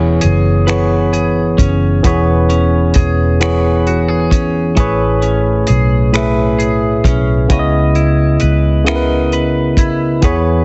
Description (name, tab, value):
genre	slow six-eight R&B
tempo	44 BPM (dotted quarters)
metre	6/8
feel	straight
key	E major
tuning	A4 = 441 Hz
part	clean electric guitar	second line	0.0-10.6 s	E3 to D#5	-24 LUFS	equal	lush chorus, slapback echo
part	barky tine electric piano	accompaniment	0.0-10.6 s	A2 to E5	-17 LUFS	equal	overdrive
part	vintage muted fingered electric bass	bass	0.0-10.6 s	E1 to E2	-17 LUFS	equal	none
part	damped 70s drum kit	drums	0.2-10.4 s	finger snaps, hi-hat, kick drum	-18 LUFS	equal	none
room	light reverb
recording	heavily compressed radio sound, multiband compression, nothing above 8.0 kHz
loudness	-13 LUFS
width	mono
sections	0.0-10.6 A section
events	none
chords	0.0 E6; 4.8 Amaj9; 7.5 C#m9